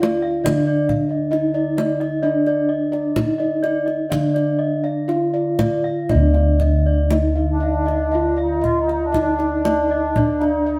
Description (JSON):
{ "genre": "Javanese gamelan", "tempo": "59-70 BPM", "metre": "4/4", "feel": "straight", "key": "unclear", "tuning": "A4 = 441 Hz", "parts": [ { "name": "gamelan-type bronze metallophone", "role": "melody", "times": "0.0-10.8 s", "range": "D4 to F4-30c", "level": "-24 LUFS", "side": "equal", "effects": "none" }, { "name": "gamelan-type bossed gongs", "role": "arpeggios", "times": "0.0-10.8 s", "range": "D5 to F5-30c", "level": "-29 LUFS", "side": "equal", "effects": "none" }, { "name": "gamelan-type bronze metallophone", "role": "arpeggios", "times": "0.0-10.8 s", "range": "D5 to F5-30c", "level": "-28 LUFS", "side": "equal", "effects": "none" }, { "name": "gamelan-type bossed gongs", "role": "bass", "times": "0.0-10.8 s", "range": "D2 to Eb4+20c", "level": "-25 LUFS", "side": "equal", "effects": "none" }, { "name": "kendang", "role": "percussion", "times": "0.0-10.5 s", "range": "none", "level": "-27 LUFS", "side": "equal", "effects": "none" }, { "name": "mellow accordion", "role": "second line", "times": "7.5-10.8 s", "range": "D4 to F4-30c", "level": "-27 LUFS", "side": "equal", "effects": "none" } ], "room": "moderate stone room reverb, RT60 1.0 s", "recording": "band playing live in one room", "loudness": "-19 LUFS", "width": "mono", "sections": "0.0-6.1 A section; 6.1-10.8 B section", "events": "none", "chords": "none", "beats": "0.45 1.33 | 2.24 3.17 4.12 5.09 | 6.10 7.11 8.13 9.14 | 10.16" }